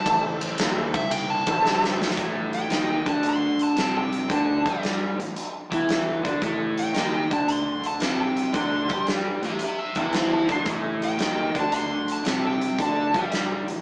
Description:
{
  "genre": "blues rock power trio and southern rock",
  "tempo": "113 BPM",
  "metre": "4/4",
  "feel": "swing 68% on 8ths",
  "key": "A minor",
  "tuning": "A4 = 440 Hz",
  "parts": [
    { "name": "smooth overdriven lead guitar", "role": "melody", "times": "0.0-13.3 s", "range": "G4 to C6", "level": "-29 LUFS", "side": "equal", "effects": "none" },
    { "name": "bright tonewheel organ", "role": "sustained chords", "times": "0.0-2.1 s", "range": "A4 to E5", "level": "-36 LUFS", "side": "equal", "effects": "slow rotary speaker" },
    { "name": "fuzz fingered electric bass", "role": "bass", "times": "0.1-13.8 s", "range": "A1 to G2", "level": "-35 LUFS", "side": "equal", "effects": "overdrive" },
    { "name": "big rock drum kit", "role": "drums", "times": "0.1-13.8 s", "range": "hi-hat, kick drum, ride cymbal, snare drum", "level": "-30 LUFS", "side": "equal", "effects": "none" },
    { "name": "crunchy overdriven guitar", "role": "riff", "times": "2.2-13.8 s", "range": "A2 to G4", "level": "-28 LUFS", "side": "equal", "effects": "none" }
  ],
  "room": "moderate studio reverb, RT60 0.8 s",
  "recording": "band playing live in one room, small speaker sound",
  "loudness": "-24 LUFS",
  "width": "mono",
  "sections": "0.0-2.2 A section; 2.2-13.8 B section",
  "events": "lead electric guitar solo 0.0-2.2; drum fill 1.6-2.2",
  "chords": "0.0 Am"
}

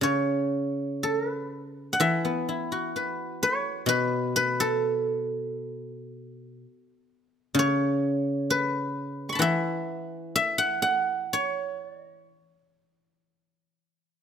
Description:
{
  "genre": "chinese traditional, Chinese solo plucked strings",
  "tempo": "64 BPM",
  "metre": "4/4",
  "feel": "uneven beats, rubato",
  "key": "E zhi mode",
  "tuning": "A4 = 444 Hz",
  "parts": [
    { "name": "guzheng", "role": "solo", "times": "0.0-14.2 s", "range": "B2 to C#6", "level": "-25 LUFS", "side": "equal", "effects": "none" }
  ],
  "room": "light reverb",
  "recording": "close, detailed microphones",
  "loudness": "-24 LUFS",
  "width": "side -7 dB against mid",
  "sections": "0.0-14.2 A section",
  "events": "none",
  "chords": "none"
}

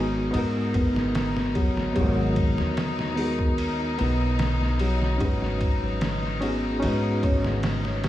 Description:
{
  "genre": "trip hop",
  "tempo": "74 BPM",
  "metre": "4/4",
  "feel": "straight",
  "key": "G# minor",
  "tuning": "A4 = 440 Hz",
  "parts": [
    { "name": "bright reed electric piano", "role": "accompaniment", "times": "0.0-8.1 s", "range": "B3 to B4", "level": "-29 LUFS", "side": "equal", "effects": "fast tremolo, tape echo" },
    { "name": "rich chamber string section", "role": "sustained chords", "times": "0.0-8.1 s", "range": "D#4", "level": "-33 LUFS", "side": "left 5 dB", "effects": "none" },
    { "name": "felt-muted upright piano", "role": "arpeggios", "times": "0.0-8.1 s", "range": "F#3 to C#4", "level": "-30 LUFS", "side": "left 1 dB", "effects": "vintage 12-bit sampler grit, tape echo" },
    { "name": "upright bass", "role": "bass", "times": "0.0-8.1 s", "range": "G#1 to G#2", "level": "-27 LUFS", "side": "equal", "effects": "tube saturation" },
    { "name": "trip hop sampler-style drum kit", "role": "drums", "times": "0.3-8.1 s", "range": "hi-hat, kick drum, ride cymbal, snare drum", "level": "-28 LUFS", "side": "equal", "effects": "dub echo" }
  ],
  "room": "light reverb, small room reverb",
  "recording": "echo-heavy mix, vinyl crackle, studio reverb",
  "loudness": "-22 LUFS",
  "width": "side -13 dB against mid",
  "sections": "0.0-8.1 A section",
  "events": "none",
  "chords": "0.0 G#m7; 5.2 Badd9/G#"
}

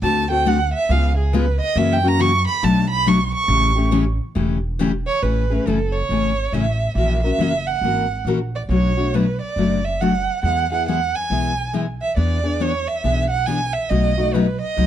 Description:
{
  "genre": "acoustic string swing (jazz manouche)",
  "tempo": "138 BPM",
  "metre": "4/4",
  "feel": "swing 63% on 8ths",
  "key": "A major from 5.2 s",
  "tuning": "A4 = 440 Hz",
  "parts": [
    { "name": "warm violin", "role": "melody", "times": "0.0-14.9 s", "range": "G#4 to C#6", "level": "-21 LUFS", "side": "right 5 dB", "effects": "plate reverb" },
    { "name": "picked steel-string acoustic guitar", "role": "accompaniment", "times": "0.0-14.9 s", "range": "B2 to A#4", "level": "-21 LUFS", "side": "left 4 dB", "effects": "none" },
    { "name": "upright bass", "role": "bass", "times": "0.0-14.9 s", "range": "E1 to F#2", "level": "-22 LUFS", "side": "right 1 dB", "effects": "none" }
  ],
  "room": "light reverb",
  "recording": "dark, warm production",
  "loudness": "-17 LUFS",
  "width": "side -11 dB against mid",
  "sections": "0.0-5.2 A section; 5.2-14.9 B section",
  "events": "violin solo 0.0-5.2",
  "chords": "0.0 D7; 0.9 C#7; 1.8 F#7; 2.6 Bm7; 3.5 A7; 5.2 Amaj7; 7.0 F#7; 8.7 Bm7; 10.4 E; 12.2 E7; 13.9 B7"
}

